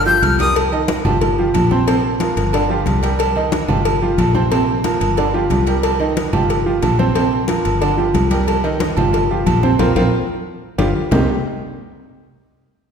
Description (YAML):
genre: latin, salsa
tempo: 182 BPM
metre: 4/4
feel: straight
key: C minor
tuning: A4 = 440 Hz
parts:
  - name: breathy bright jazz flute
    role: melody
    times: 0.0-0.6 s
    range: Eb6 to G6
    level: -16 LUFS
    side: left 4 dB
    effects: none
  - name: clear concert grand piano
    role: accompaniment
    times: 0.0-11.3 s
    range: C3 to Eb5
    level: -19 LUFS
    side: right 2 dB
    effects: none
  - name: fingered electric bass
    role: bass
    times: 0.0-11.3 s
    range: G1 to C2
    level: -20 LUFS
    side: equal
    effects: none
  - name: congas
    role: percussion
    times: 0.1-11.2 s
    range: none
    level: -24 LUFS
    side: left 3 dB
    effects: none
  - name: cowbell and bongos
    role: percussion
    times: 0.2-11.2 s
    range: none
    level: -24 LUFS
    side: left 5 dB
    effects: none
  - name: timbales and agogo bells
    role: percussion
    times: 0.2-11.2 s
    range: none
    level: -23 LUFS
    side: right 6 dB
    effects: none
room: wet scoring stage reverb, RT60 1.6 s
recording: recorded in a church or concert hall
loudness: -14 LUFS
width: side -7 dB against mid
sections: 0.6-11.1 A section; 11.1-12.4 B section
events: band accent 9.8-11.1; drum fill 10.5-11.1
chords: 0.0 G5; 0.6 Cm; 1.2 Gm7; 2.5 G5; 3.2 Cm7; 3.9 Gm7; 5.2 G5; 5.8 Cm7; 6.5 Gm7; 7.8 G5; 8.5 Cm7; 9.1 Gm7; 9.8 Bbsus2; 10.5 G5; 11.1 Cm7